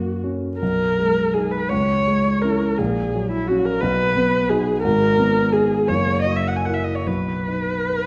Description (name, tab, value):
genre	classical, romantic duo for viola and grand piano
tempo	48-59 BPM (dotted quarters)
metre	6/8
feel	rubato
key	B major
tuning	A4 = 440 Hz
part	dark viola	melody	0.0-8.1 s	E4 to G#5	-23 LUFS	equal	none
part	warm baby grand piano	accompaniment	0.0-8.1 s	F#1 to B4	-23 LUFS	equal	none
room	wet recital hall reverb, RT60 1.4 s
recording	heard from further back in the room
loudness	-20 LUFS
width	mono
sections	0.0-8.1 A section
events	none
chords	0.0 F#; 0.6 G#m/B; 1.7 C#m; 2.8 F#/A#; 3.8 B; 4.8 G#m; 5.9 F#7; 7.1 B